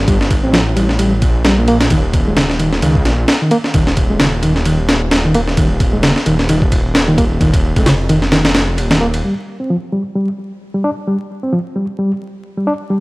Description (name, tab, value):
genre	breakbeat, breaks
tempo	131 BPM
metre	4/4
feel	swing 57% on 16ths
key	G minor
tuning	A4 = 440 Hz
part	detuned saw bass	bass	0.0-9.2 s	Eb1 to C#2	-17 LUFS	equal	none
part	reed electric piano	riff	0.1-13.0 s	C#3 to D4	-16 LUFS	equal	overdrive, medium tremolo, low-pass filter, tape echo
part	breakbeat sampler-style drum kit	drums	0.1-9.2 s	kick drum, ride cymbal, snare drum	-14 LUFS	equal	none
room	light reverb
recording	dry, gritty hardware recording, vinyl crackle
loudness	-12 LUFS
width	side -22 dB against mid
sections	0.0-9.2 A section; 9.2-13.0 B section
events	filter sweep on reed electric piano 0.0-9.2, 9.2-13.0; kick drops out 8.3-9.2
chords	0.0 Gmadd9; 1.9 Ebsus2; 9.2 G5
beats	| 0.08 0.54 0.99 1.45 | 1.91 2.37 2.83 3.28 | 3.74 4.20 4.66 5.12 | 5.57 6.03 6.49 6.95 | 7.41 7.86 8.32 8.78 | 9.24 9.70 10.15 10.61 | 11.07 11.53 11.99 12.44 | 12.90